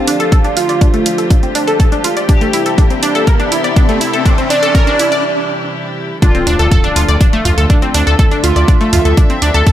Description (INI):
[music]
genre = melodic techno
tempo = 122 BPM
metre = 4/4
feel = straight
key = D minor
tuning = A4 = 440 Hz
[part]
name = rich chamber string section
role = sustained chords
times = 0.0-9.7 s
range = C3 to A5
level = -22 LUFS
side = equal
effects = sidechain pumping
[part]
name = analog pluck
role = arpeggios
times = 0.0-9.7 s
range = A3 to D5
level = -16 LUFS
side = equal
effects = chorus, cassette tape, sidechain pumping, tape echo
[part]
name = riser and impact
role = sound effects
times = 0.9-8.2 s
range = none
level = -23 LUFS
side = left 1 dB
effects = none
[part]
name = warbly tape-like pad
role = texture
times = 0.0-5.2 s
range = D4 to F5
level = -24 LUFS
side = left 1 dB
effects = chorus, built-in reverb, sidechain pumping
[part]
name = house drum kit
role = drums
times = 0.1-9.7 s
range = hi-hat, toms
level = -20 LUFS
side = right 2 dB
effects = high-pass filter on hats, high-pass filter on toms, high-pass filter on room
[part]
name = electronic kick drum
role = drums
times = 0.3-9.7 s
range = none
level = -10 LUFS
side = equal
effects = none
[part]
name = resonant sweep polysynth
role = melody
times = 0.6-9.1 s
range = F4 to D5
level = -19 LUFS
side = right 2 dB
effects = chorus, sidechain pumping, dub echo
[part]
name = gritty driven synth bass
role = bass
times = 6.5-9.6 s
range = D2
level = -12 LUFS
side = equal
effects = sidechain pumping
[sound]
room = light reverb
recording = none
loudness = -10 LUFS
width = side -12 dB against mid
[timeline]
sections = 0.0-6.2 A section; 6.2-9.7 B section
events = build-up 0.0-6.2; filter sweep on synth pluck 0.0-6.2; filter sweep on analog polysynth 0.0-6.2; riser 0.9-5.2; break 5.2-6.2; drop 6.2-9.7; impact 6.2-8.2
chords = 0.0 Dm; 2.3 C; 6.2 Dm